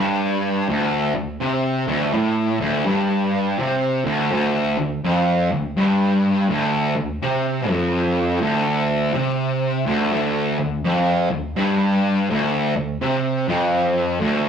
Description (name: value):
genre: metal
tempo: 83 BPM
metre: 4/4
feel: swing 64% on 8ths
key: D minor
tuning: A4 = 440 Hz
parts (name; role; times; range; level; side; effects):
- fuzz guitar; solo; 0.0-14.5 s; D2 to C3; -18 LUFS; equal; distortion
room: moderate stone room reverb, RT60 0.9 s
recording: rough rehearsal-room recording, tube saturation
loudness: -18 LUFS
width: side -7 dB against mid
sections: 0.0-4.3 A section; 4.3-14.5 B section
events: none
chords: none